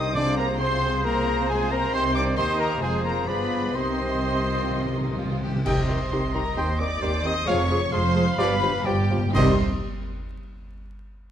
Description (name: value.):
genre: classical, dramatic, fast romantic movement for symphony orchestra.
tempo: 120-137 BPM.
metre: 4/4.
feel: rubato.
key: C minor.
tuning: A4 = 442 Hz.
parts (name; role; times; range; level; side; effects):
dark symphonic violin section; melody; 0.0-9.6 s; G5 to Eb6; -32 LUFS; left 2 dB; none.
bright silver concert flute; second line; 0.0-9.6 s; G5 to Eb6; -32 LUFS; left 1 dB; none.
clear clarinet; second line; 0.0-9.6 s; G4 to Ab4; -34 LUFS; left 2 dB; none.
clear oboe; second line; 0.0-9.5 s; C5 to F5; -34 LUFS; right 1 dB; none.
warm symphonic violin section; second line; 0.0-9.6 s; C4 to Eb5; -33 LUFS; left 2 dB; none.
rich symphonic viola section; accompaniment; 0.0-9.6 s; G3 to Eb5; -33 LUFS; equal; none.
warm bassoon; accompaniment; 0.0-9.5 s; Eb3 to F3; -35 LUFS; right 2 dB; none.
mellow French horn section; sustained chords; 0.0-9.6 s; Eb3 to Ab4; -32 LUFS; left 3 dB; none.
mellow trumpet; stabs; 0.0-9.5 s; Ab4 to G5; -31 LUFS; right 2 dB; none.
dark symphonic double bass section; bass; 0.0-9.6 s; F1 to Eb2; -29 LUFS; right 1 dB; none.
warm symphonic cello section; bass; 0.0-9.6 s; Eb2 to C3; -29 LUFS; right 1 dB; none.
timpani; percussion; 0.1-0.8, 3.8-9.6 s; G2 to C3; -31 LUFS; equal; none.
cymbal swell, clash cymbals and concert bass drum; percussion; 1.9-6.5, 9.3-10.2 s; none; -34 LUFS; equal; none.
room: light reverb.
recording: close, detailed microphones, vinyl crackle.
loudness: -21 LUFS.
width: side -10 dB against mid.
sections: 0.0-5.7 A section; 5.7-9.3 B section; 9.3-11.2 C section.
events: timpani fill 3.8-5.7, 8.4-9.3; band accent 5.7-6.1, 9.3-9.8.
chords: 0.1 Fm/C; 1.9 Cm; 2.8 Fm; 3.3 G7b9; 3.8 Cm; 6.6 Cm/Eb; 7.5 Db/F; 8.4 G7; 9.3 Cm.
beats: | 0.15 0.60 1.05 1.50 | 1.94 2.38 2.83 3.28 | 3.75 4.24 4.71 5.18 | 5.66 6.12 6.57 7.02 | 7.47 7.93 8.38 8.86 | 9.35 9.82.